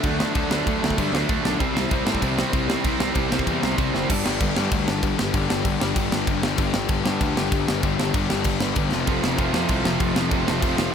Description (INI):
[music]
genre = punk rock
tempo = 193 BPM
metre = 4/4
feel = straight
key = G mixolydian from 4.1 s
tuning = A4 = 440 Hz
[part]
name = biting overdriven guitar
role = riff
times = 0.0-10.9 s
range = F2 to G4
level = -27 LUFS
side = equal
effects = none
[part]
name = cranked stack guitar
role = riff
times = 0.0-4.1, 9.1-10.9 s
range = F2 to D4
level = -27 LUFS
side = right 14 dB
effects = overdrive
[part]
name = sludgy distorted guitar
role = riff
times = 0.0-10.9 s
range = F2 to D4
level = -27 LUFS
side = left 12 dB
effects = overdrive
[part]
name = fuzz picked electric bass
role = bass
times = 0.0-10.9 s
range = F1 to A2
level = -28 LUFS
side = right 1 dB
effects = overdrive
[part]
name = tight metal drum kit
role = drums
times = 0.0-10.9 s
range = crash cymbal, kick drum, snare drum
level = -24 LUFS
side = right 1 dB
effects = none
[sound]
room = little or no reverb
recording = none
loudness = -20 LUFS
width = side -7 dB against mid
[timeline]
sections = 0.0-4.1 A section; 4.1-10.9 B section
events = drum fill 3.9, 8.9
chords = 0.0 D; 1.6 C; 4.1 G; 8.9 F